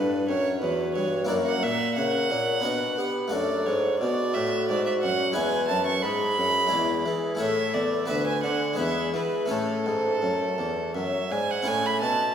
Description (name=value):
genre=classical, baroque-style sonata movement with continuo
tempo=88 BPM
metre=3/4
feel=rubato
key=A major from 3.3 s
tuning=A4 = 440 Hz
part: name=mellow baroque flute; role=melody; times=0.0-11.7 s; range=D4 to D5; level=-29 LUFS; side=left 3 dB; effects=none
part: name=rich violin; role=second line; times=0.0-12.3 s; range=A4 to C#6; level=-27 LUFS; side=right 3 dB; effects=none
part: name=harpsichord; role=accompaniment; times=0.0-12.3 s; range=D2 to D5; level=-30 LUFS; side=left 2 dB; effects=none
part: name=warm bassoon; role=bass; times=0.0-12.3 s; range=D2 to B3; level=-30 LUFS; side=right 1 dB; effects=none
room=wet scoring stage reverb, RT60 2.0 s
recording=none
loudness=-23 LUFS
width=side -8 dB against mid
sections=0.0-11.7 A section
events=none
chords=0.0 Bm; 1.3 F#7; 2.6 Bm; 3.3 D/F#; 5.4 E; 6.7 E7; 7.4 A; 8.1 Bm/D; 8.8 E; 9.5 A